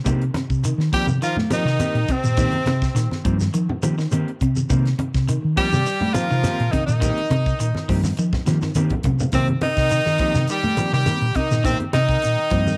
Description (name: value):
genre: afrobeat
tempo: 104 BPM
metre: 4/4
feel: straight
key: C minor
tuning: A4 = 440 Hz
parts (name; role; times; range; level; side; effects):
- mellow electric guitar; stabs; 0.0-12.7 s; Eb3 to G4; -32 LUFS; equal; none
- electric guitar at the edge of break-up; arpeggios; 0.1-12.7 s; C3 to F3; -30 LUFS; equal; none
- hollow-body short-scale fingered electric bass; bass; 0.1-12.7 s; G2 to A3; -24 LUFS; equal; none
- tight funk drum kit; drums; 0.1-12.7 s; hi-hat, kick drum, snare drum; -29 LUFS; equal; none
- congas; percussion; 0.1-12.8 s; none; -29 LUFS; equal; none
- shekere; percussion; 0.1-12.8 s; none; -32 LUFS; equal; none
- edgy tenor saxophone; melody; 0.9-12.8 s; C4 to G4; -26 LUFS; equal; slapback echo
- brilliant trombone section; second line; 0.9-12.8 s; C3 to G3; -34 LUFS; equal; none
- brilliant trumpet; second line; 1.0-12.8 s; C4 to Bb4; -36 LUFS; equal; none
room: little or no reverb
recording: none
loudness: -20 LUFS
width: mono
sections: 0.0-12.8 A section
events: drum fill 8.5-9.3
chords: 0.0 Cm7